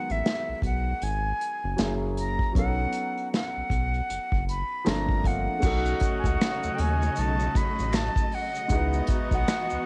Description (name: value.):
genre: R&B, neo-soul.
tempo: 78 BPM.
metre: 4/4.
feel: swing 60% on 16ths.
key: unclear.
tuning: A4 = 442 Hz.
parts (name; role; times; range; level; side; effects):
breathy concert flute; melody; 0.0-9.8 s; E5 to B5; -33 LUFS; equal; cassette tape.
warm baby grand piano; accompaniment; 0.0-9.9 s; D#3 to A5; -36 LUFS; equal; cassette tape.
round analog bass; bass; 0.1-9.8 s; F#1 to D#2; -31 LUFS; equal; none.
unplugged drum kit; drums; 0.1-9.7 s; crash cymbal, hi-hat, kick drum, snare drum; -30 LUFS; equal; cassette tape.
warm studio string section; sustained chords; 5.6-9.9 s; C#3 to D#5; -37 LUFS; equal; cassette tape.
bright saxophone section; stabs; 5.6-9.9 s; B3 to F#4; -36 LUFS; equal; cassette tape.
maracas and finger snaps; percussion; 5.6-9.8 s; none; -44 LUFS; equal; none.
room: light reverb, small room ambience.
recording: home recording on cassette.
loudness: -27 LUFS.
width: mono.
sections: 0.0-5.6 A section; 5.6-9.9 B section.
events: grand piano fill 4.5-5.6.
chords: 0.0 G#m7; 1.8 F#7; 2.5 B7; 4.9 Gm11; 5.6 B9; 8.7 C#m11.